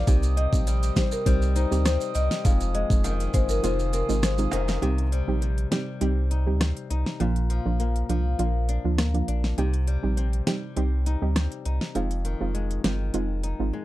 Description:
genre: dancehall.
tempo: 101 BPM.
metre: 4/4.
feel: straight.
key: C minor.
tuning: A4 = 440 Hz.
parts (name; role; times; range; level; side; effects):
glass harmonica; sustained chords; 0.0-4.8 s; C5 to Eb6; -36 LUFS; right 2 dB; sidechain pumping.
flamenco guitar; arpeggios; 0.0-13.8 s; F2 to Eb4; -33 LUFS; left 5 dB; ping-pong delay.
warm sub bass; bass; 0.0-13.7 s; F1 to D2; -25 LUFS; equal; none.
soft round pluck; accompaniment; 0.1-13.7 s; F3 to G4; -30 LUFS; right 4 dB; chorus, sidechain pumping.
pop drum kit; drums; 0.1-13.6 s; hi-hat, kick drum, rim click, snare drum; -25 LUFS; equal; none.
maracas and timbales; percussion; 0.1-4.8 s; none; -38 LUFS; right 5 dB; none.
marimba with soft mallets; melody; 0.4-4.7 s; Bb4 to Eb5; -31 LUFS; left 4 dB; ping-pong delay.
room: little or no reverb.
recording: dark, warm production.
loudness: -22 LUFS.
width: side -16 dB against mid.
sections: 0.0-4.8 A section; 4.8-13.8 B section.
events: kick muted 3.6-4.8; break 4.8-13.8.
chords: 0.1 Cm; 2.4 Fm7; 4.8 Cm; 7.2 Bb; 9.6 Cm; 12.0 Fm7.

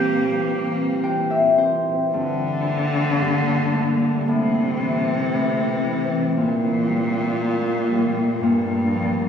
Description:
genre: celtic folk, Celtic slow air.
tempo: 54-59 BPM.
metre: 4/4.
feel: rubato.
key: G dorian.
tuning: A4 = 440 Hz.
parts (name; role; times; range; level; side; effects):
rich cello; melody; 0.0-9.3 s; G2 to Bb3; -23 LUFS; left 1 dB; none.
bright baroque flute; second line; 0.0-1.5 s; G4; -28 LUFS; right 5 dB; none.
Celtic harp; accompaniment; 0.0-9.3 s; G2 to G5; -22 LUFS; left 2 dB; none.
ethereal airy pad; sustained chords; 0.0-9.3 s; A2 to D4; -25 LUFS; equal; ensemble chorus, built-in reverb.
room: wet cathedral reverb, RT60 5.2 s.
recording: recorded in a church or concert hall, small room ambience.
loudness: -18 LUFS.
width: side -7 dB against mid.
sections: 0.0-2.1 A section; 2.1-9.3 B section.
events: harp fill 0.5-2.1.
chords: 0.0 C7; 2.1 Gmadd9; 4.3 Am; 6.4 Gmadd9/Bb; 8.4 Bbadd9.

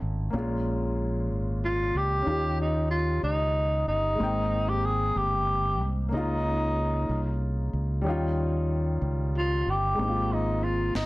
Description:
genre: slow gospel.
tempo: 62 BPM (dotted quarters).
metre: 6/8.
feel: straight.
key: Ab major.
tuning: A4 = 440 Hz.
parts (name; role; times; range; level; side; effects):
breathy tenor saxophone; melody; 0.0-11.1 s; Eb4 to Ab4; -27 LUFS; equal; none.
warm grand piano; accompaniment; 0.0-11.1 s; Ab2 to G5; -31 LUFS; left 1 dB; none.
fingered electric bass; bass; 0.0-11.1 s; G1 to Eb2; -28 LUFS; equal; none.
snare drum; drums; 11.0-11.1 s; none; -30 LUFS; equal; none.
room: light reverb, small room ambience.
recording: dense, heavily limited modern master.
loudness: -24 LUFS.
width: side -20 dB against mid.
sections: 0.0-11.1 A section.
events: none.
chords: 0.3 Bbm7; 2.3 Eb9; 4.2 Abmaj9; 6.1 Db69; 8.1 Eb9; 10.0 Ab69.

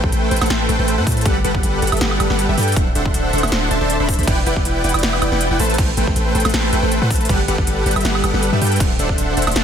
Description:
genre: future bass.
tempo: 159 BPM.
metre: 4/4.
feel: swing 54% on 16ths, half-time.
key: G major.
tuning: A4 = 440 Hz.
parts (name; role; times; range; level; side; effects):
dense compressed supersaw; riff; 0.0-9.6 s; G3 to B5; -18 LUFS; equal; sidechain pumping, dub echo.
long sustained 808-style bass; bass; 0.0-9.6 s; D1 to A2; -20 LUFS; equal; sidechain pumping.
electronic kick drum; drums; 0.0-9.2 s; none; -20 LUFS; equal; none.
big-room dance drum kit; drums; 0.1-9.6 s; crash cymbal, hi-hat, snare drum, woodblock; -23 LUFS; right 1 dB; none.
room: light reverb.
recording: dense, heavily limited modern master.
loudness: -15 LUFS.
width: side -8 dB against mid.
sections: 0.0-9.6 A section.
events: none.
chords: 0.0 Am7; 1.3 Gmaj7; 2.8 D7; 4.3 Em7; 5.6 Am7; 7.3 Gmaj7; 8.8 D7.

